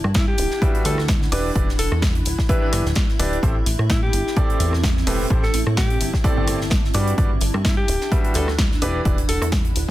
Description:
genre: piano house.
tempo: 128 BPM.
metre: 4/4.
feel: swing 55% on 16ths.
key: A dorian.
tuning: A4 = 441 Hz.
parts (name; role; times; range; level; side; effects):
plucky analog bass; bass; 0.0-9.9 s; D1 to A2; -23 LUFS; equal; sidechain pumping.
house drum kit; drums; 0.0-9.9 s; hi-hat, rim click, snare drum; -26 LUFS; equal; studio reverb.
granular cloud pad; texture; 0.0-9.9 s; C4 to B5; -29 LUFS; right 1 dB; built-in reverb, sidechain pumping.
electronic kick drum; drums; 0.1-9.9 s; none; -21 LUFS; equal; studio reverb.
modern studio drum kit; drums; 0.1-9.9 s; hi-hat, snare drum; -34 LUFS; right 3 dB; sidechain pumping on hats, high-pass filter on hats, studio reverb, high-pass filter on snare, high-pass filter on room.
breathy alto saxophone; melody; 0.2-9.5 s; E4 to B4; -28 LUFS; left 1 dB; none.
clear baby grand piano; riff; 0.6-9.2 s; A2 to E5; -26 LUFS; right 1 dB; sidechain pumping.
room: small room ambience.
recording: dense, heavily limited modern master.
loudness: -17 LUFS.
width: side -15 dB against mid.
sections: 0.0-9.9 A section.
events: none.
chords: 0.0 Gmaj7; 1.3 Em7; 3.4 Am7; 6.9 Gmaj7; 8.8 Em7.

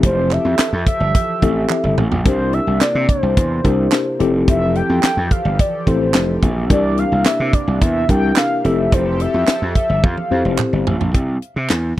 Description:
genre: early-eighties boogie funk.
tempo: 108 BPM.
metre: 4/4.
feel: straight.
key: F major.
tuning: A4 = 440 Hz.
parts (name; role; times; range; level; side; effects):
mellow horn-like synth lead; melody; 0.0-10.6 s; C5 to G5; -21 LUFS; equal; chorus.
mellow tine electric piano; accompaniment; 0.0-10.9 s; C4 to C5; -20 LUFS; left 4 dB; medium stereo tremolo.
chorused pulse-width pad; sustained chords; 0.0-11.1 s; C3 to A4; -28 LUFS; right 2 dB; none.
gritty slap bass; bass; 0.0-11.9 s; F1 to C3; -18 LUFS; equal; overdrive.
tight funk drum kit; drums; 0.0-11.8 s; handclaps, hi-hat, kick drum, snare drum, toms; -16 LUFS; equal; none.
group handclap; percussion; 0.3-11.8 s; none; -24 LUFS; right 9 dB; none.
room: small room ambience.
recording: dry, close 1970s-style studio recording.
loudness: -14 LUFS.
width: side -14 dB against mid.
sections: 0.0-11.1 A section.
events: drum fill 1.7-2.3, 10.0-11.1.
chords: 0.0 Fmaj9; 2.3 C9; 4.2 Fmaj9; 6.7 C9; 8.6 Fmaj9; 11.1 C.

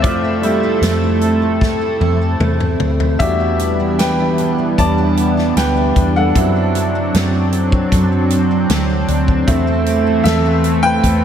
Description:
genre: pop ballad.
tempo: 76 BPM.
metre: 4/4.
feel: straight.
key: E minor.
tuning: A4 = 440 Hz.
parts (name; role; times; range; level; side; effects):
clear grand piano; accompaniment; 0.0-11.2 s; F#3 to A5; -20 LUFS; equal; lush chorus.
chorused pulse-width pad; sustained chords; 0.0-11.2 s; E3 to E5; -17 LUFS; equal; none.
picked steel-string acoustic guitar; arpeggios; 0.0-11.2 s; E2 to A4; -24 LUFS; right 2 dB; ensemble chorus, tape echo.
vintage muted fingered electric bass; bass; 0.0-11.2 s; D2 to F#2; -19 LUFS; equal; none.
natural country drum kit; drums; 0.0-11.2 s; hi-hat, kick drum, snare drum, toms; -19 LUFS; equal; none.
room: moderate lush hall reverb, RT60 2.5 s.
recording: dreamy mix soaked in reverb.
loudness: -13 LUFS.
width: side -9 dB against mid.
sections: 0.0-11.2 A section.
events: grand piano solo 0.0-11.2; drum fill 1.6-3.2.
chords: 0.0 Fmaj7; 3.2 Em7; 6.4 D7/F#; 9.5 Am/E.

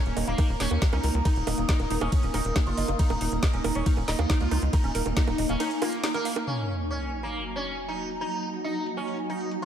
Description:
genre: psychedelic trance.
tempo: 138 BPM.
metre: 4/4.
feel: straight.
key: Eb minor.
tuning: A4 = 440 Hz.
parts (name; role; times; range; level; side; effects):
sitar; melody; 0.0-9.7 s; Bb3 to F4; -33 LUFS; right 1 dB; phaser, sidechain pumping, analog delay.
swarming drone; sustained chords; 0.0-9.7 s; Gb3 to Bb4; -34 LUFS; equal; built-in reverb, sidechain pumping.
warbly tape-like pad; texture; 0.1-9.7 s; Bb3 to Eb6; -36 LUFS; right 3 dB; chorus, built-in reverb, phaser, sidechain pumping.
tight sequencer bass; bass; 0.1-5.6 s; Eb1 to Eb2; -28 LUFS; equal; none.
garage drum kit; drums; 0.1-9.7 s; bongos, crash cymbal, hi-hat, ride cymbal, snare drum; -32 LUFS; right 3 dB; overdrive, low-pass filter on hats, low-pass filter on cymbals, low-pass filter on perc, low-pass filter on snare.
woody wave-folded pluck; riff; 0.2-6.3 s; Db4 to F5; -35 LUFS; equal; chorus, auto-pan, sidechain pumping, ping-pong delay.
electronic kick drum; drums; 0.4-5.3 s; none; -24 LUFS; equal; overdrive.
sub drop; sound effects; 6.5-8.2 s; none; -34 LUFS; equal; none.
room: light reverb.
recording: none.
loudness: -24 LUFS.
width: side -9 dB against mid.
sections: 0.0-6.5 A section; 6.5-9.7 B section.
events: drop 0.0-6.5; break 5.6-6.5; impact 6.5-8.2; filter sweep on synth drone 6.5-9.7.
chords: 0.0 Eb5.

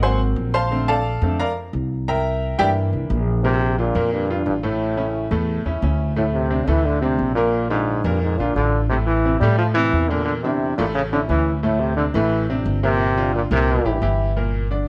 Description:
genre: latin.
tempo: 176 BPM.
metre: 4/4.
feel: straight.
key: unclear.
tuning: A4 = 439 Hz.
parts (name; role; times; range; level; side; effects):
bright upright piano; accompaniment; 0.0-14.8 s; A2 to C6; -25 LUFS; equal; none.
upright bass; bass; 0.0-14.8 s; G1 to A2; -24 LUFS; equal; none.
clear trombone; melody; 3.4-14.0 s; G2 to G3; -24 LUFS; equal; none.
room: light reverb.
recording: none.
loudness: -20 LUFS.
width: mono.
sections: 0.0-3.4 A section; 3.4-14.4 B section.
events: upright piano solo 0.0-3.4.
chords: 0.0 Ab9; 0.7 Bbmaj9; 2.1 C9; 3.4 Bb6; 4.8 A; 6.2 D5; 7.5 Bb7; 8.9 Am; 10.3 Bbmaj9#11; 10.9 A; 11.6 D5; 13.0 Gm7; 13.7 C7; 14.4 Gm.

